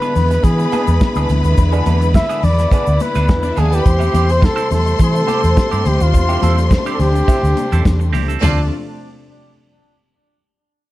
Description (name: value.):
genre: disco.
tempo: 105 BPM.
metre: 4/4.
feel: straight.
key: D dorian.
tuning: A4 = 440 Hz.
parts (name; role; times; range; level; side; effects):
warm flugelhorn; melody; 0.0-8.7 s; D4 to E5; -21 LUFS; equal; tube saturation.
clear studio string section; second line; 0.0-8.7 s; D4 to C6; -23 LUFS; left 2 dB; none.
electric guitar at the edge of break-up; accompaniment; 0.0-8.6 s; B3 to B4; -25 LUFS; right 8 dB; wah.
clear studio string section; sustained chords; 0.0-8.7 s; C3 to E4; -24 LUFS; left 1 dB; none.
warm soul drum kit; drums; 0.0-8.6 s; hi-hat, kick drum, snare drum, toms; -15 LUFS; equal; none.
congas; percussion; 0.0-8.7 s; none; -27 LUFS; left 5 dB; none.
tube shaker; percussion; 0.0-8.7 s; none; -43 LUFS; left 6 dB; none.
vintage muted fingered electric bass; bass; 0.2-8.7 s; C#2 to E3; -15 LUFS; equal; none.
room: small room ambience.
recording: dark, warm production.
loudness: -12 LUFS.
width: side -16 dB against mid.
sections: 0.0-8.4 A section; 8.4-10.7 B section.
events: none.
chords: 0.0 E7; 3.9 Am7; 8.4 Dm7.